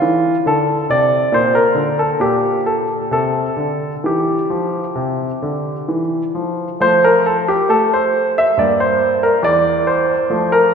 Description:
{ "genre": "classical, baroque-style suite movement for grand piano", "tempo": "64-70 BPM", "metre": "4/4", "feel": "rubato", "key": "F major", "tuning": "A4 = 440 Hz", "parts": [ { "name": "clear grand piano", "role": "solo", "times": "0.0-10.7 s", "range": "E2 to E5", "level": "-14 LUFS", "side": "equal", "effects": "none" } ], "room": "wet church reverb, RT60 3.4 s", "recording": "recorded in a church or concert hall", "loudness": "-14 LUFS", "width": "side -6 dB against mid", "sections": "0.0-6.8 A section; 6.8-10.7 B section", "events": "none", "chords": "0.0 Dm; 1.3 Bbmaj13; 3.1 Csus4; 6.8 F; 8.6 Em7b5", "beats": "0.47 1.34 2.21 | 3.12 4.05 4.96 5.88 | 6.79 7.69 8.57 9.44 | 10.30" }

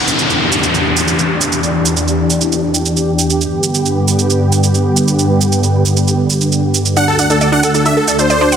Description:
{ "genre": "uplifting trance", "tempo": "135 BPM", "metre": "4/4", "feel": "straight", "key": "E minor", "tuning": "A4 = 440 Hz", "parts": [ { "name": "analog string pad", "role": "sustained chords", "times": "0.1-8.6 s", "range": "D2 to G4", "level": "-14 LUFS", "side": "equal", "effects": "ensemble chorus, vintage 12-bit sampler grit" }, { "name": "downlifter", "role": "sound effects", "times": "0.0-3.4 s", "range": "none", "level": "-17 LUFS", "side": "left 1 dB", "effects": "none" }, { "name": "shaker", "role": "drums", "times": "0.1-8.6 s", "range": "none", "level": "-18 LUFS", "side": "right 5 dB", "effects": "none" }, { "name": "supersaw chords", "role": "melody", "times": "7.0-8.6 s", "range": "A4 to F#5", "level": "-13 LUFS", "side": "equal", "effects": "phaser, digital delay" }, { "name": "wide unison pluck", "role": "arpeggios", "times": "7.0-8.6 s", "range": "D4 to F#5", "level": "-18 LUFS", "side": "right 1 dB", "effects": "dub echo" } ], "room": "moderate lush hall reverb, RT60 1.8 s, digital ambience", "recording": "dense, heavily limited modern master", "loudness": "-11 LUFS", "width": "side -8 dB against mid", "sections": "0.0-8.6 A section", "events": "none", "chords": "0.0 Em7; 3.4 G; 7.0 D", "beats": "0.30 0.74 1.19 | 1.63 2.08 2.52 2.97 | 3.41 3.86 4.30 4.75 | 5.19 5.63 6.08 6.52 | 6.97 7.41 7.86 8.30" }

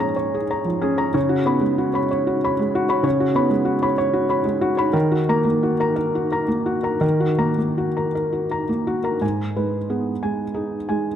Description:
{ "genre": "neoclassical minimalist piano", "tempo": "54-65 BPM (dotted quarters)", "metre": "6/8", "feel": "rubato", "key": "G# minor", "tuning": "A4 = 439 Hz", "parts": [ { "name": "felt-muted upright piano", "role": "solo", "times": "0.0-11.2 s", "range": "G#2 to B5", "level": "-18 LUFS", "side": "equal", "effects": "none" } ], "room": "moderate concert hall reverb, RT60 2.1 s", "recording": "none", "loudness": "-18 LUFS", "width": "side -9 dB against mid", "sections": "0.0-9.2 A section; 9.2-11.2 B section", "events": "none", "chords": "0.0 A#m7; 1.2 C#7sus4; 4.9 D#m; 9.2 G#m", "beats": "0.18 | 1.16 2.10 | 3.05 3.98 | 4.95 5.97 | 7.03 8.14 | 9.22 10.24" }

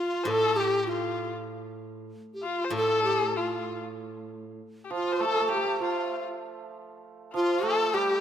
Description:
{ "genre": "chinese traditional, Chinese chamber ensemble", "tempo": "98 BPM", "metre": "2/4", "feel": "rubato", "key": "unclear", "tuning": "A4 = 440 Hz", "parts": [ { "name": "mellow hollow large dizi", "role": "melody", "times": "0.0-8.2 s", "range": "F4 to A4", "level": "-28 LUFS", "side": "equal", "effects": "none" }, { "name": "warm erhu", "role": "second line", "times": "0.0-8.2 s", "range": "F4 to C5", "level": "-30 LUFS", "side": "left 5 dB", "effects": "none" }, { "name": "steel-string zither", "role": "accompaniment", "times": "0.3-4.6 s", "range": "A2", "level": "-34 LUFS", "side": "right 2 dB", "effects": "none" }, { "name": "hammered dulcimer", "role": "second line", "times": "4.9-8.2 s", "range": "F3 to A3", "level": "-31 LUFS", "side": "right 6 dB", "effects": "none" } ], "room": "moderate concert hall reverb, RT60 2.1 s", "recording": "none", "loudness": "-25 LUFS", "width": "side -9 dB against mid", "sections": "0.0-8.2 A section", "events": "none", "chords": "none", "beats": "| 0.29 0.90 | 1.50 2.11 | 2.72 3.34 | 3.97 4.59 | 5.21 5.82 | 6.42 7.02 | 7.63" }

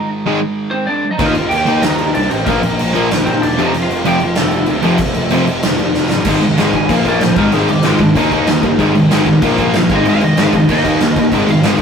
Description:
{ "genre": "punk rock", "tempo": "190 BPM", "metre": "4/4", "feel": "straight", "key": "unclear", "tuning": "A4 = 438 Hz", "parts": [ { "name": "lightly driven lead guitar", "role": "melody", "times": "0.0-11.8 s", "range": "A3 to Ab5", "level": "-21 LUFS", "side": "right 2 dB", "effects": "tape echo" }, { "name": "thick fuzz guitar", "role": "riff", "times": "0.0-11.8 s", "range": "F2 to Eb4", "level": "-24 LUFS", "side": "right 2 dB", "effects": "none" }, { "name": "distorted electric guitar", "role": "riff", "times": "0.3-11.8 s", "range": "F2 to Eb4", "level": "-18 LUFS", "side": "right 5 dB", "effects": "overdrive" }, { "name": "overdriven electric guitar", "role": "riff", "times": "0.3-11.8 s", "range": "F2 to Eb4", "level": "-15 LUFS", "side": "left 3 dB", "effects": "none" }, { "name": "fuzz picked electric bass", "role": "bass", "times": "1.2-11.8 s", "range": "E1 to Bb2", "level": "-22 LUFS", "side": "equal", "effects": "overdrive" }, { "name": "big rock drum kit", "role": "drums", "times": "1.2-11.8 s", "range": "crash cymbal, kick drum, snare drum", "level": "-16 LUFS", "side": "equal", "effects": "none" } ], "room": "light reverb", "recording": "rough rehearsal-room recording, warm saturation", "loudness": "-11 LUFS", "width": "side -6 dB against mid", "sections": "0.0-6.3 A section; 6.3-11.8 B section", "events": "half time 0.0-6.3; drum fill 6.0-6.3", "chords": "0.0 Ab; 1.2 Eb; 2.5 Bb; 3.6 F; 6.3 Ab5; 6.9 Bb5; 7.4 Ab5; 8.2 Eb; 8.8 Ab5; 9.4 Bb5; 9.9 Ab5; 10.7 Eb5", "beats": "0.26 0.58 0.89 | 1.21 1.53 1.84 2.16 | 2.48 2.79 3.11 3.42 | 3.74 4.06 4.37 4.69 | 5.00 5.32 5.64 5.95 | 6.27 6.59 6.90 7.22 | 7.54 7.85 8.17 8.49 | 8.80 9.12 9.44 9.75 | 10.07 10.38 10.70 11.02 | 11.33 11.65" }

